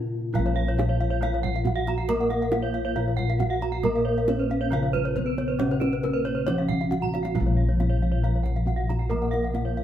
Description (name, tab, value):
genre	Balinese gamelan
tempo	137 BPM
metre	4/4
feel	straight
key	Bb pelog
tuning	A4 = 440 Hz
part	gamelan-type bronze metallophone	melody	0.0-9.8 s	Bb3 to Bb4	-30 LUFS	equal	none
part	gamelan-type bronze metallophone	accompaniment	0.0-9.8 s	Db3-30c to Bb3	-35 LUFS	right 1 dB	none
part	gamelan-type bossed gongs	bass	0.0-9.8 s	Bb1 to Bb4	-25 LUFS	left 1 dB	none
part	kendang	percussion	0.3-9.8 s	none	-33 LUFS	right 5 dB	none
part	gamelan-type bronze metallophone	arpeggios	0.4-9.8 s	Bb4 to Bb5	-32 LUFS	left 2 dB	none
part	gamelan-type bronze metallophone	arpeggios	0.6-9.8 s	Bb4 to Bb5	-34 LUFS	right 7 dB	none
room	light reverb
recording	band playing live in one room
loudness	-22 LUFS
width	side -10 dB against mid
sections	0.3-9.8 A section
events	break 0.0-0.3; drum fill 7.0-7.3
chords	none